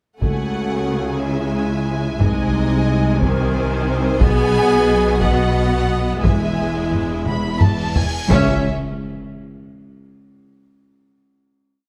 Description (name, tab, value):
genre	cinematic, epic orchestral film score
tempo	59 BPM (dotted quarters)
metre	6/8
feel	straight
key	C# minor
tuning	A4 = 440 Hz
part	dark symphonic violin section	melody	0.2-8.7 s	D#5 to B5	-32 LUFS	equal	none
part	warm symphonic violin section	second line	0.2-8.7 s	B#4 to G#5	-31 LUFS	equal	none
part	rich symphonic viola section	accompaniment	0.2-8.7 s	D#3 to C#4	-27 LUFS	equal	none
part	clear French horn section	sustained chords	0.2-8.6 s	B#3 to G#4	-26 LUFS	equal	none
part	rich symphonic double bass section	bass	0.2-8.7 s	E1 to C#2	-25 LUFS	equal	none
part	warm symphonic cello section	bass	0.2-8.7 s	C#2 to C#3	-26 LUFS	equal	none
part	taiko ensemble	drums	0.2-9.7 s	none	-21 LUFS	equal	none
part	timpani	percussion	0.2-1.2, 8.3-8.6 s	C#3	-29 LUFS	equal	none
part	cymbal swell and impact	sound effects	7.5-10.4 s	none	-33 LUFS	equal	none
room	light reverb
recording	close, detailed microphones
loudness	-18 LUFS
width	mono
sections	0.2-8.3 theme; 8.3-10.4 final chord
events	drum fill 7.3-8.3; cymbal swell 7.5-8.3; impact 8.3-10.4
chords	0.2 C#m; 2.2 G#/B#; 4.2 B; 6.2 E; 8.3 N.C.